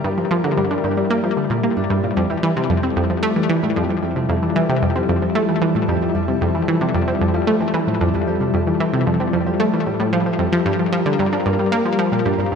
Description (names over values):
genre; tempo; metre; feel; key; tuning
ambient, sequencer-driven space music; 113 BPM; 4/4; straight; unclear; A4 = 440 Hz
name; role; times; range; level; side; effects
lush unison pad; sustained chords; 0.0-12.6 s; F3 to Bb4; -24 LUFS; equal; chorus
concert harp; arpeggios; 0.0-12.6 s; G3 to G4; -23 LUFS; left 5 dB; auto-pan, ping-pong delay
analog pluck; riff; 0.0-12.6 s; F2 to D4; -19 LUFS; right 1 dB; chorus, ping-pong delay
room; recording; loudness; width
wet scoring stage reverb, RT60 2.0 s; none; -16 LUFS; side -6 dB against mid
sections
0.0-12.6 A section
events
fade-in on analog synth pad 0.0-12.6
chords
0.0 Gm7; 2.2 Fmaj7; 10.7 Gm7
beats
| 0.04 0.57 1.10 1.64 | 2.17 2.70 3.23 3.76 | 4.29 4.82 5.35 5.88 | 6.41 6.94 7.47 8.01 | 8.54 9.07 9.60 10.13 | 10.66 11.19 11.72 12.25